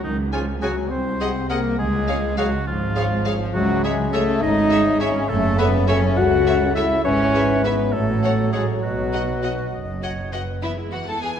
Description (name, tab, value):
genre	cinematic, playful, whimsical film cue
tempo	68 BPM (dotted quarters)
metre	6/8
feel	straight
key	E major from 3.5 s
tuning	A4 = 440 Hz
part	warm oboe	second line	0.0-9.7 s	D#4 to F#5	-27 LUFS	equal	none
part	mellow French horn section	sustained chords	0.0-9.7 s	D#3 to F#4	-22 LUFS	left 3 dB	none
part	warm studio cello section	bass	0.0-10.5 s	B#1 to B2	-26 LUFS	right 3 dB	none
part	warm studio double bass section	bass	0.0-11.4 s	F#1 to E2	-26 LUFS	right 3 dB	none
part	rich studio violin section	melody	0.3-11.4 s	E5 to A5	-33 LUFS	left 4 dB	none
part	mellow hollow concert flute	second line	0.3-10.3 s	C#5 to G#5	-32 LUFS	equal	none
part	rich studio violin section	second line	0.3-11.3 s	E4 to D#5	-32 LUFS	left 2 dB	none
part	warm clarinet	second line	0.3-10.6 s	G#4 to D#5	-32 LUFS	left 3 dB	none
part	mellow bassoon	accompaniment	0.3-10.3 s	B#2 to F#3	-31 LUFS	equal	none
part	warm studio viola section	accompaniment	0.3-11.4 s	E3 to A4	-32 LUFS	right 1 dB	none
room	wet concert hall reverb, RT60 2.0 s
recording	dark, warm production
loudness	-18 LUFS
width	side -8 dB against mid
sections	0.0-10.6 A section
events	none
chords	0.0 C#5; 0.9 G#7/B#; 1.8 C#; 3.5 C#m; 5.3 F#m7; 7.0 E/G#; 7.9 F#m/A; 8.8 B; 10.6 E